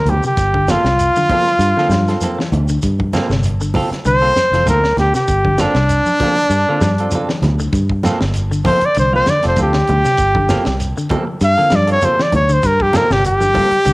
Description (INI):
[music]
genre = afrobeat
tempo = 98 BPM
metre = 4/4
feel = swing 55% on 16ths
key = G dorian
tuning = A4 = 440 Hz
[part]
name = warm trumpet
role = melody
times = 0.0-13.9 s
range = D4 to F5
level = -14 LUFS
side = equal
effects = cassette tape
[part]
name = semi-hollow electric guitar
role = arpeggios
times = 0.0-13.9 s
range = C3 to G3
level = -22 LUFS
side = left 2 dB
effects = none
[part]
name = semi-hollow electric guitar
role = stabs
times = 0.1-13.9 s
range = Bb3 to A4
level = -24 LUFS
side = right 2 dB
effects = none
[part]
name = fingered electric bass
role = bass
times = 0.1-13.9 s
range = F1 to G2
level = -17 LUFS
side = equal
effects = none
[part]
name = tight funk drum kit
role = drums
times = 0.1-13.9 s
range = hi-hat, kick drum, snare drum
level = -24 LUFS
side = equal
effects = cassette tape
[part]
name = congas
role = percussion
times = 0.1-13.7 s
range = none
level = -24 LUFS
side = equal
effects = none
[part]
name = shekere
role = percussion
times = 0.1-13.9 s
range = none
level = -28 LUFS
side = equal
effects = none
[sound]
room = light reverb, small room ambience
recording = home recording on cassette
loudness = -12 LUFS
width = side -22 dB against mid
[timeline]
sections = 0.0-13.9 A section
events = trumpet solo 0.0-13.9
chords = 0.0 Gm11